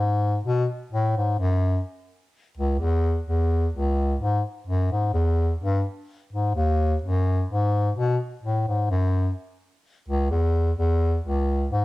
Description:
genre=reggae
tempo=64 BPM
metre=4/4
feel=straight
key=C# minor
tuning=A4 = 440 Hz
part: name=warm bass clarinet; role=solo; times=0.0-11.8 s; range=C#2 to B2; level=-21 LUFS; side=equal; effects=cassette tape
room=moderate spring reverb, RT60 1.1 s, studio reverb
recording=home recording on cassette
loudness=-22 LUFS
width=side -18 dB against mid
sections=0.0-11.8 A section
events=none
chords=none

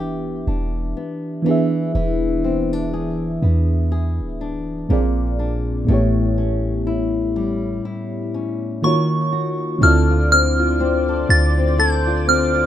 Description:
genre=R&B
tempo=61 BPM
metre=4/4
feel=swing 58% on 16ths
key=D dorian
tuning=A4 = 440 Hz
part: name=mellow FM electric piano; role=accompaniment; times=0.0-12.7 s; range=A2 to E5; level=-22 LUFS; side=right 2 dB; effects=chorus
part: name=flamenco guitar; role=arpeggios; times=0.0-12.7 s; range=A2 to A4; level=-23 LUFS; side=left 6 dB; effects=none
part: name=clean 808-style bass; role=bass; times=0.0-12.7 s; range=D1 to E2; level=-20 LUFS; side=right 1 dB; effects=none
part: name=soft synth bell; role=melody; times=8.8-12.7 s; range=Db6 to A6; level=-19 LUFS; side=right 1 dB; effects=chorus, phaser, tape echo
part: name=lush unison pad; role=sustained chords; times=9.8-12.7 s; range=C5 to D6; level=-29 LUFS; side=right 1 dB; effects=chorus
room=digital ambience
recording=rough home demo mix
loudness=-17 LUFS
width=side -11 dB against mid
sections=0.0-9.8 A section; 9.8-12.7 B section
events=break 7.9-9.8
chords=0.0 Em7; 1.5 E7; 4.9 Bb9; 5.9 A7; 8.8 Ebm7; 9.8 Dm7

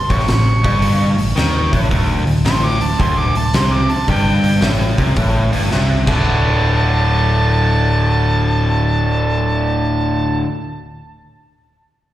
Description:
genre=blues rock power trio and southern rock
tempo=110 BPM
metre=4/4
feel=swing 66% on 8ths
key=unclear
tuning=A4 = 444 Hz
part: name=mellow harmonica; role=melody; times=0.0-10.4 s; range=G5 to D6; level=-21 LUFS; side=right 2 dB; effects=overdrive, slapback echo, tape echo
part: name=overdriven electric guitar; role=riff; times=0.1-10.5 s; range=D2 to Eb3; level=-18 LUFS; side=equal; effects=none
part: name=fingered electric bass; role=bass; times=0.1-10.4 s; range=D1 to Eb2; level=-17 LUFS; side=equal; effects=none
part: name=oversized low-tuned drum kit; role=drums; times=0.1-6.2 s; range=crash cymbal, hi-hat, kick drum, snare drum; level=-20 LUFS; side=equal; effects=none
room=light reverb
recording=live gig heard through the venue's PA, recital hall reverb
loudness=-13 LUFS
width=side -13 dB against mid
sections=0.0-6.3 A section; 6.3-10.6 B section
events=drum fill 5.7-6.3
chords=0.0 A7; 1.9 D5; 4.1 Gsus24; 6.0 D5

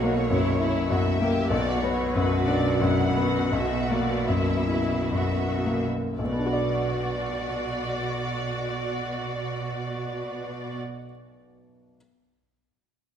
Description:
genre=classical, romantic movement for piano and orchestra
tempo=52-105 BPM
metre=3/4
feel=rubato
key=B minor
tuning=A4 = 438 Hz
part: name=clear concert grand piano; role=melody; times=0.0-12.0 s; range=B1 to D5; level=-25 LUFS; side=left 2 dB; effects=none
part: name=warm symphonic violin section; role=second line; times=0.0-10.8 s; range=E4 to F#5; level=-30 LUFS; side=left 1 dB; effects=none
part: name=rich symphonic cello section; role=bass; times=0.0-10.8 s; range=B2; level=-30 LUFS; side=right 5 dB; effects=none
room=moderate scoring stage reverb, RT60 1.7 s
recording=none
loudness=-23 LUFS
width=side -8 dB against mid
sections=0.0-6.2 A section; 6.2-11.9 B section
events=slowing down 0.6-6.2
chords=0.0 F#7/B

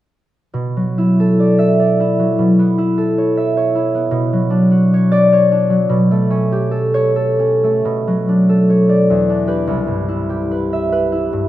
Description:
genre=classical, solo harp piece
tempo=84-106 BPM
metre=3/4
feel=rubato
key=B minor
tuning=A4 = 439 Hz
part: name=concert harp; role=solo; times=0.5-11.5 s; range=C2 to E5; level=-13 LUFS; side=equal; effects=none
room=light reverb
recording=close, detailed microphones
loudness=-13 LUFS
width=side -14 dB against mid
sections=0.5-7.9 A section; 7.9-11.5 B section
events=none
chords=0.5 Bm7; 2.4 Aadd9/B; 4.2 Bmadd9; 5.9 A9/B; 7.9 Bm9; 9.1 Em7; 9.7 Cmaj7

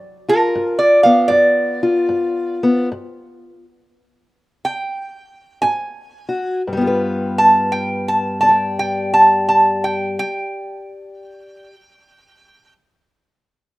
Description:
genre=acoustic country blues, solo or duo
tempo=56-79 BPM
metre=4/4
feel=swing 65% on 8ths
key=G mixolydian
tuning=A4 = 439 Hz
part: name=fingerpicked steel-string acoustic guitar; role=accompaniment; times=0.0-11.7 s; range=G2 to G5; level=-20 LUFS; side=left 2 dB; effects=none
part: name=lap resonator guitar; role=melody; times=0.3-12.7 s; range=Bb4 to A5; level=-14 LUFS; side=right 1 dB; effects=none
room=studio reverb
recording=rough home demo mix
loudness=-14 LUFS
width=side -18 dB against mid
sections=0.0-6.7 A section; 6.7-10.9 B section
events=slowing down 0.0-6.7; stop 2.9-5.6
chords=0.0 G7; 2.9 N.C.; 5.6 F#sus2/G#; 6.7 G7

